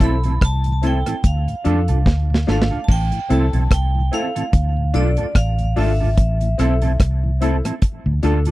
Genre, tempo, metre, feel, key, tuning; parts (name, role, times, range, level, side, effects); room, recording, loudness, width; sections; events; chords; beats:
roots reggae; 73 BPM; 4/4; swing 56% on 16ths; D dorian; A4 = 440 Hz
vibraphone with hard mallets; melody; 0.0-7.0 s; D5 to B5; -27 LUFS; right 1 dB; tape echo
mellow electric guitar; accompaniment; 0.0-8.5 s; C4 to A4; -26 LUFS; right 5 dB; ensemble chorus, tape echo
mellow tonewheel organ; accompaniment; 0.0-8.5 s; D2 to F4; -28 LUFS; left 2 dB; slow rotary speaker, tape echo
dark baby grand piano; stabs; 0.0-8.5 s; C4 to A4; -24 LUFS; left 5 dB
vintage muted fingered electric bass; bass; 0.0-8.5 s; G#1 to F2; -18 LUFS; equal
deep reggae drum kit; drums; 0.0-8.5 s; crash cymbal, hi-hat, kick drum, rim click, snare drum; -17 LUFS; equal
little or no reverb; dry, close 1970s-style studio recording; -16 LUFS; side -17 dB against mid
0.0-2.9 A section; 2.9-8.5 B section
drum fill 2.1-2.9
0.0 Am; 1.2 Dm; 2.9 Am; 4.5 Dm; 6.2 Am; 7.8 Dm
0.42 1.24 2.06 | 2.88 3.71 4.53 5.35 | 6.17 7.00 7.82